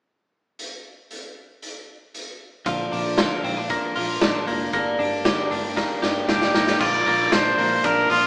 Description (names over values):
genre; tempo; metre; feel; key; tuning
jangly indie pop; 116 BPM; 4/4; straight; unclear; A4 = 442 Hz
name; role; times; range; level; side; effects
raw garage drum kit; drums; 0.6-8.2 s; crash cymbal, hi-hat, kick drum, ride cymbal, snare drum; -24 LUFS; equal; none
picked steel-string acoustic guitar; accompaniment; 2.7-8.3 s; G2 to Bb4; -28 LUFS; equal; none
twelve-string electric guitar; arpeggios; 2.7-8.3 s; F3 to G4; -24 LUFS; equal; none
vintage muted fingered electric bass; bass; 2.7-8.3 s; F1 to Bb1; -38 LUFS; equal; none
bright trumpet; melody; 6.3-8.3 s; F4 to D5; -19 LUFS; equal; none
room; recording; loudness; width
moderate stone room reverb, RT60 1.2 s; band playing live in one room, small speaker sound; -19 LUFS; side -27 dB against mid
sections
0.6-2.7 A section; 2.7-6.8 B section; 6.8-8.3 C section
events
drum fill 5.8-6.8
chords
0.6 N.C.; 2.7 Bb; 4.7 Gm; 6.8 Bb